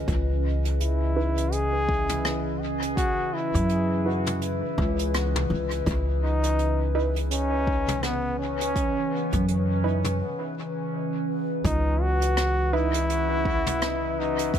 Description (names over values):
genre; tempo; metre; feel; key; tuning
ambient dub; 83 BPM; 4/4; swing 58% on 16ths; C# minor; A4 = 439 Hz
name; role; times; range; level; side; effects
warbly tape-like pad; sustained chords; 0.0-14.6 s; C#3 to D#5; -30 LUFS; left 1 dB; chorus, built-in reverb
upright bass; bass; 0.0-14.6 s; C#2 to F#2; -26 LUFS; equal; none
electronic kick drum; drums; 0.1-14.6 s; none; -29 LUFS; equal; none
jazz brush drum kit; drums; 0.1-14.6 s; hi-hat, rim click, toms; -34 LUFS; right 1 dB; dub echo
bright trombone; melody; 0.8-14.6 s; B3 to G#4; -28 LUFS; equal; dub echo
filtered dub chord stab; stabs; 1.2-13.0 s; D#4 to B4; -34 LUFS; right 5 dB; chorus, dub echo
room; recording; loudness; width
light reverb, studio reverb; echo-heavy mix; -23 LUFS; side -9 dB against mid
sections
0.0-11.6 A section; 11.6-14.6 B section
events
break 10.2-11.6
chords
0.0 C#m9